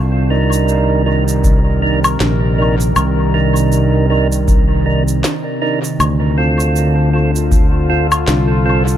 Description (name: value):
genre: ambient dub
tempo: 79 BPM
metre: 4/4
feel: swing 58% on 16ths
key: C dorian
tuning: A4 = 440 Hz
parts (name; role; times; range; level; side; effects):
- warbly tape-like pad; sustained chords; 0.0-9.0 s; C3 to D5; -18 LUFS; equal; chorus, built-in reverb, vintage 12-bit sampler grit
- fingered electric bass; bass; 0.0-9.0 s; Bb1 to D2; -15 LUFS; equal; none
- percussive tonewheel organ; stabs; 0.3-8.8 s; C4 to Bb4; -19 LUFS; right 4 dB; slow rotary speaker, dub echo
- electronic shaker, woodblock and snare drum; drums; 0.5-9.0 s; none; -20 LUFS; left 1 dB; dub echo
- electronic kick drum; drums; 1.4-7.7 s; none; -14 LUFS; equal; overdrive
room: light reverb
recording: none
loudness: -12 LUFS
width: side -11 dB against mid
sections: 0.0-9.0 A section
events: none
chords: 0.0 Cm9; 6.0 Dm7